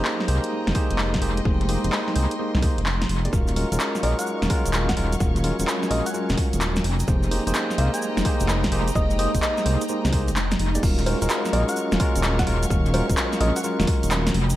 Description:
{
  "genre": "UK garage, two-step garage",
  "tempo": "128 BPM",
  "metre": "4/4",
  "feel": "swing 67% on 16ths",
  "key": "Eb dorian",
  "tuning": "A4 = 440 Hz",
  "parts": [
    { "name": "clear chamber violin section", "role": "sustained chords", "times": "0.0-14.6 s", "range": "Eb5 to Db6", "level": "-36 LUFS", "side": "equal", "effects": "sidechain pumping" },
    { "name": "tine electric piano", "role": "stabs", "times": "0.0-14.3 s", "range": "Ab3 to D5", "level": "-27 LUFS", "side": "equal", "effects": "analog delay" },
    { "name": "dark detuned saw bass", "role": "bass", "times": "0.0-14.5 s", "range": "Eb1 to C2", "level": "-23 LUFS", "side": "equal", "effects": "tube saturation" },
    { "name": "house drum kit", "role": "drums", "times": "0.0-14.6 s", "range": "bongos, crash cymbal, handclaps, hi-hat, snare drum", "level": "-27 LUFS", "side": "equal", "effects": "overdrive, tape echo" },
    { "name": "granular cloud pad", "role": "texture", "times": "0.0-14.6 s", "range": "Gb3 to Bb5", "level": "-32 LUFS", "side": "equal", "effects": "built-in reverb, sidechain pumping" },
    { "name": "electronic kick drum", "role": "drums", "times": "0.8-14.0 s", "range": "none", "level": "-24 LUFS", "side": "equal", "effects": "overdrive" },
    { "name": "cabasa", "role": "percussion", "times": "3.3-14.6 s", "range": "none", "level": "-35 LUFS", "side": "right 3 dB", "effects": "none" },
    { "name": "soft struck synth lead", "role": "melody", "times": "4.0-13.7 s", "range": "Eb5 to Ab5", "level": "-31 LUFS", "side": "left 1 dB", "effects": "chorus, tape echo" }
  ],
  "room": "light reverb, digital ambience",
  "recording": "echo-heavy mix, vinyl crackle",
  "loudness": "-20 LUFS",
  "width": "side -14 dB against mid",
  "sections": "0.0-10.8 A section; 10.8-14.6 B section",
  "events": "kick drops out 10.4-10.8; drop 10.8-14.6",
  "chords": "0.0 Fm11; 3.3 Ebm11; 6.8 Fm11; 10.8 Ebm11"
}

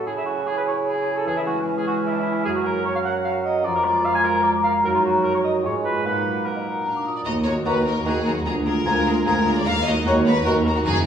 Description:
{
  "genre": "cinematic, playful, whimsical film cue",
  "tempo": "151 BPM",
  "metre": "3/4",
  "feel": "straight",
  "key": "Eb minor",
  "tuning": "A4 = 441 Hz",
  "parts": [
    { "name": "mellow cor anglais", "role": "second line", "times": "0.0-10.6 s", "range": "D4 to Ab5", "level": "-26 LUFS", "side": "right 1 dB", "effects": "none" },
    { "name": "mellow hollow concert flute", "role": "second line", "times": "0.0-10.5 s", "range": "Eb5 to Eb6", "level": "-26 LUFS", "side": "left 1 dB", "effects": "none" },
    { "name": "warm clarinet", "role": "second line", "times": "0.0-10.6 s", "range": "C#4 to Gb4", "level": "-30 LUFS", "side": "equal", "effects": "none" },
    { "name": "warm bassoon", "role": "accompaniment", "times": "0.0-10.6 s", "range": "C#3 to Bb3", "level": "-27 LUFS", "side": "right 2 dB", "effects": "none" },
    { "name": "concert harp", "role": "arpeggios", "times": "0.0-11.1 s", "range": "E2 to Bb5", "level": "-29 LUFS", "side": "equal", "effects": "none" },
    { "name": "rich chamber violin section", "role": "second line", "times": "6.9-11.0 s", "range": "Gb4 to F5", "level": "-24 LUFS", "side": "left 2 dB", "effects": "none" },
    { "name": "rich chamber violin section", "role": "melody", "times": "7.2-10.9 s", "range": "Bb5", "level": "-30 LUFS", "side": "left 4 dB", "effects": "none" },
    { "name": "rich chamber viola section", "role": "accompaniment", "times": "7.3-10.9 s", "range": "Bb3 to Ab4", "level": "-30 LUFS", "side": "right 1 dB", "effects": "none" },
    { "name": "dark French horn section", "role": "sustained chords", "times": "7.3-11.1 s", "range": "Gb3 to F4", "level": "-29 LUFS", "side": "left 1 dB", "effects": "none" },
    { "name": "rich chamber double bass section", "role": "bass", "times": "7.3-11.1 s", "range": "Gb1 to Eb2", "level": "-26 LUFS", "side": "right 2 dB", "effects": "none" },
    { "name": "warm chamber cello section", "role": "bass", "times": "7.3-11.1 s", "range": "D2 to Gb2", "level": "-25 LUFS", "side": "right 3 dB", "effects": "none" }
  ],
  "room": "wet recital hall reverb, RT60 1.4 s",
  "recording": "recorded in a church or concert hall, small room ambience",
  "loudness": "-19 LUFS",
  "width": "side -8 dB against mid",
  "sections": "0.0-7.3 A section; 7.3-11.1 B section",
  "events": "none",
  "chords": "0.1 C#m; 1.3 C#m/E; 2.5 Gb; 3.6 Bb5/F; 4.8 Ebm/Gb; 5.6 Fdim/Ab; 6.0 Ebm/Bb; 6.9 Bb; 7.3 Ebm; 8.5 Bb7/D; 9.7 Ebm"
}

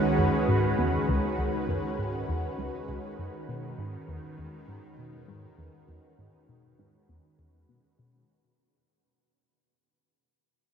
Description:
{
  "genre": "ambient, sequencer-driven space music",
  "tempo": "100 BPM",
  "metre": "4/4",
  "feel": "straight",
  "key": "E major",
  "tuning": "A4 = 439 Hz",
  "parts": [
    { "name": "lush unison pad", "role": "sustained chords", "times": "0.0-8.3 s", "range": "D#3 to B4", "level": "-29 LUFS", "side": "right 1 dB", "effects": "chorus, phaser" },
    { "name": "fat analog bass", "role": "bass", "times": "0.0-8.3 s", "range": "C#2 to E2", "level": "-40 LUFS", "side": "equal", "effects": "none" },
    { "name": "tight sequenced synth", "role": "riff", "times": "0.2-8.2 s", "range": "C#2 to B2", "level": "-31 LUFS", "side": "left 1 dB", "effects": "chorus, ping-pong delay" }
  ],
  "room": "wet huge ambient reverb, RT60 8.8 s",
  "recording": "none",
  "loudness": "-27 LUFS",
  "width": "side -7 dB against mid",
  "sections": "0.0-8.3 A section",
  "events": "fade-out on analog synth bass 0.0-8.3; fade-out 0.0-8.3",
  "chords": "0.0 C#7(no3); 3.5 E6"
}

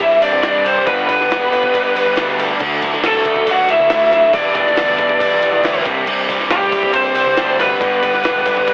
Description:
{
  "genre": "indie rock",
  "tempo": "138 BPM",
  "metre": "4/4",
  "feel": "straight",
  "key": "unclear",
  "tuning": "A4 = 442 Hz",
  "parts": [
    { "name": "lead guitar through a small cranked amp", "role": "melody", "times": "0.0-8.7 s", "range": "G4 to F#5", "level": "-14 LUFS", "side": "equal", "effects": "overdrive, slapback echo" },
    { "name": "mellow trumpet", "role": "second line", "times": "0.0-8.7 s", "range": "G3 to F#4", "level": "-23 LUFS", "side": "equal", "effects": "none" },
    { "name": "mellow tonewheel organ", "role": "sustained chords", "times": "0.0-8.7 s", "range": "A4 to E6", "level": "-26 LUFS", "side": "equal", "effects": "slow rotary speaker" },
    { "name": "overdriven electric guitar", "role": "riff", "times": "0.0-8.7 s", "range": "G2 to E4", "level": "-22 LUFS", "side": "right 1 dB", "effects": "lush chorus, slapback echo" },
    { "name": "sludgy distorted guitar", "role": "riff", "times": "0.0-8.7 s", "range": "E2 to G4", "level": "-22 LUFS", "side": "left 1 dB", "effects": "overdrive" },
    { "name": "jungle sampler-style drum kit", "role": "drums", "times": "0.0-8.7 s", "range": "crash cymbal, kick drum, ride cymbal, snare drum", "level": "-22 LUFS", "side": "equal", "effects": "none" },
    { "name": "tube shaker", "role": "percussion", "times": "0.2-8.7 s", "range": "none", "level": "-45 LUFS", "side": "right 1 dB", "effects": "none" },
    { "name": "growling picked electric bass", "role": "bass", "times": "0.3-8.6 s", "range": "E1 to G2", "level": "-25 LUFS", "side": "equal", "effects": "overdrive" }
  ],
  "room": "moderate spring reverb, RT60 1.4 s",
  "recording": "heavily compressed radio sound, telephone sound",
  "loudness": "-12 LUFS",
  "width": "side -25 dB against mid",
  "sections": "0.0-8.7 A section",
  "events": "none",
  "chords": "0.0 Csus2; 0.9 G; 2.6 Dadd9; 4.3 Em; 5.9 Csus2; 7.8 G"
}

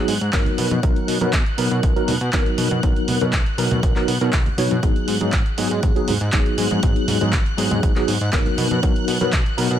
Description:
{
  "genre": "filtered disco house",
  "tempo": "120 BPM",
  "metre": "4/4",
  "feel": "straight",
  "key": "unclear",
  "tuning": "A4 = 440 Hz",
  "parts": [
    { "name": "tine electric piano", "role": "accompaniment", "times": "0.0-9.8 s", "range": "F#3 to C#5", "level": "-22 LUFS", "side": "equal", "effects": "overdrive, fast stereo tremolo, phaser, sidechain pumping, low-pass filter" },
    { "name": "string machine, full ensemble", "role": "sustained chords", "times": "0.0-9.8 s", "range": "F#6", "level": "-30 LUFS", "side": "left 1 dB", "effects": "ensemble chorus, sidechain pumping, low-pass filter" },
    { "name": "fat analog bass", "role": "bass", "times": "0.0-9.8 s", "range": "G#1 to B2", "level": "-23 LUFS", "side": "equal", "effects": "sidechain pumping, low-pass filter" },
    { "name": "punchy analog drum machine", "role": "drums", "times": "0.1-9.8 s", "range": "handclaps, hi-hat", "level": "-26 LUFS", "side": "right 2 dB", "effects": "sidechain pumping on hats" },
    { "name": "tambourine and congas", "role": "percussion", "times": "0.1-9.8 s", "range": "none", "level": "-30 LUFS", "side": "right 2 dB", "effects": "none" },
    { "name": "electronic kick drum", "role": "drums", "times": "0.3-9.4 s", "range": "none", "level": "-20 LUFS", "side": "equal", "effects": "none" }
  ],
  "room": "little or no reverb",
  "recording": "none",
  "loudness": "-17 LUFS",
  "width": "side -10 dB against mid",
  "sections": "0.0-9.8 A section",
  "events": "filter sweep 0.0-9.8",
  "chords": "0.0 G#m7; 0.6 Bmaj7; 4.8 G#m7; 8.6 Bmaj7"
}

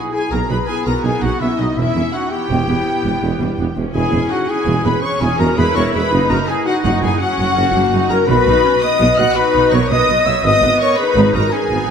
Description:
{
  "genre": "cinematic, heroic adventure film score",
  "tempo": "111 BPM (dotted quarters)",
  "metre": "12/8",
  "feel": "straight",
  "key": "unclear",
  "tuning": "A4 = 440 Hz",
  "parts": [
    { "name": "warm symphonic violin section", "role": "melody", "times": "0.0-11.9 s", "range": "D#5 to F#6", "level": "-24 LUFS", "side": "left 6 dB", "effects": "none" },
    { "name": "mellow cor anglais", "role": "second line", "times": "0.0-11.9 s", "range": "D#4 to F#5", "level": "-27 LUFS", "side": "right 1 dB", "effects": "none" },
    { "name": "silver concert flute", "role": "second line", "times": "0.0-11.9 s", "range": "D#5 to F#6", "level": "-27 LUFS", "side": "left 2 dB", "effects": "none" },
    { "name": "warm clarinet", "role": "second line", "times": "0.0-11.9 s", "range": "B3 to D#5", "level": "-25 LUFS", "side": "left 1 dB", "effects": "none" },
    { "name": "warm symphonic violin section", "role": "second line", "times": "0.0-11.9 s", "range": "D#5 to F#6", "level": "-29 LUFS", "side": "left 3 dB", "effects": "none" },
    { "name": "mellow French horn section", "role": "sustained chords", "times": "0.0-11.9 s", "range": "D#4 to E5", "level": "-19 LUFS", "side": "left 4 dB", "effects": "none" },
    { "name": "dark trumpet section", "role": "stabs", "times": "0.0-11.9 s", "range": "D#4 to F#5", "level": "-23 LUFS", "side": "right 2 dB", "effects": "none" },
    { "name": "mellow tuba", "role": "bass", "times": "0.3-11.9 s", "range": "E1 to B1", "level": "-23 LUFS", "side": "right 4 dB", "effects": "none" },
    { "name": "rich symphonic cello section", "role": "bass", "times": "0.3-11.8 s", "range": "E2 to B2", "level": "-22 LUFS", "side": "right 2 dB", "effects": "none" },
    { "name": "rich symphonic double bass section", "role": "bass", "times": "0.3-11.9 s", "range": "E1 to B1", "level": "-23 LUFS", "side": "right 3 dB", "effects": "none" },
    { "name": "clear symphonic viola section", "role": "accompaniment", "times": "0.7-11.9 s", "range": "G3 to E4", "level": "-25 LUFS", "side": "right 2 dB", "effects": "none" },
    { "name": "timpani", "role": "percussion", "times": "8.3-8.8 s", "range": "B2", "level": "-30 LUFS", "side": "right 1 dB", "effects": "none" }
  ],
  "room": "wet scoring stage reverb, RT60 1.7 s",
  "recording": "none",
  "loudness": "-13 LUFS",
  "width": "side -7 dB against mid",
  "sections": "0.0-11.9 A section",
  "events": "none",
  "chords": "0.0 Emaj9#11/B; 1.8 Em; 6.1 F#5; 8.3 B; 10.4 G#m"
}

